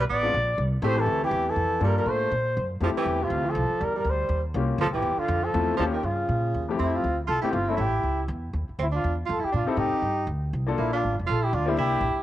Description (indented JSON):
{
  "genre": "jazz",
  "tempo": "241 BPM",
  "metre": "4/4",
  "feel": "swing 57% on 8ths",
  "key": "F major",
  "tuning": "A4 = 439 Hz",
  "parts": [
    { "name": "breathy trumpet", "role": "melody", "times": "0.0-12.2 s", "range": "E4 to D5", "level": "-27 LUFS", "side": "left 1 dB", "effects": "cassette tape" },
    { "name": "warm tenor saxophone", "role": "second line", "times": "0.0-12.2 s", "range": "C3 to F4", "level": "-30 LUFS", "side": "right 6 dB", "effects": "cassette tape" },
    { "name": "upright bass", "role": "bass", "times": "0.0-12.2 s", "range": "F1 to Bb2", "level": "-28 LUFS", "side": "equal", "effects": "none" },
    { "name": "warm baby grand piano", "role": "accompaniment", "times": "0.2-12.0 s", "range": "F2 to A4", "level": "-30 LUFS", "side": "left 6 dB", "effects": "cassette tape" }
  ],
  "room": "light reverb, small room ambience",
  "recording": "home recording on cassette",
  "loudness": "-23 LUFS",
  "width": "side -13 dB against mid",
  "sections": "0.0-6.8 A section; 6.8-12.2 B section",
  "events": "none",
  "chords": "0.3 Bbadd9; 0.8 Am7; 1.8 Gm9; 2.3 Gb; 2.8 Fmaj9; 3.8 C9; 4.3 Eb9; 4.8 Dm9; 5.8 Eb9; 6.8 Fmaj7; 7.8 A7; 8.8 Dm11; 9.8 Am7b5; 10.3 D5; 10.8 Gm7",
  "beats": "0.08 0.33 0.58 | 0.82 1.07 1.32 1.57 | 1.82 2.07 2.32 2.57 | 2.81 3.06 3.31 3.56 | 3.81 4.06 4.31 4.55 | 4.80 5.05 5.30 5.55 | 5.80 6.05 6.29 6.54 | 6.79 7.04 7.29 7.54 | 7.79 8.04 8.29 8.54 | 8.79 9.03 9.28 9.53 | 9.78 10.03 10.28 10.53 | 10.78 11.03 11.28 11.53 | 11.77 12.02"
}